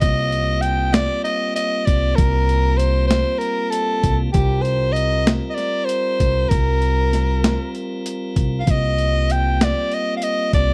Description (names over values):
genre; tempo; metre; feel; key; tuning
progressive instrumental, band music in an uneven meter; 194 BPM (eighths); 7/8; straight; C minor; A4 = 440 Hz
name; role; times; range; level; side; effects
raspy soprano saxophone; melody; 0.0-10.7 s; G4 to G5; -23 LUFS; equal; none
tonewheel organ; accompaniment; 0.0-10.7 s; G3 to Bb4; -29 LUFS; equal; overdrive, stopped rotary speaker
upright bass; bass; 0.0-10.7 s; C2; -22 LUFS; equal; none
boom bap sampler-style drum kit; drums; 0.0-10.7 s; hi-hat, kick drum, snare drum; -22 LUFS; equal; none
room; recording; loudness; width
small room ambience; dry, close 1970s-style studio recording; -19 LUFS; mono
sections
0.0-10.7 A section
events
none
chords
0.0 C5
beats
| 0.02 0.33 0.64 0.94 1.25 1.56 1.87 | 2.18 2.49 2.80 3.11 3.42 3.73 4.04 | 4.35 4.66 4.97 5.28 5.58 5.89 6.20 | 6.51 6.82 7.13 7.44 7.75 8.06 8.37 | 8.68 8.99 9.30 9.61 9.92 10.23 10.54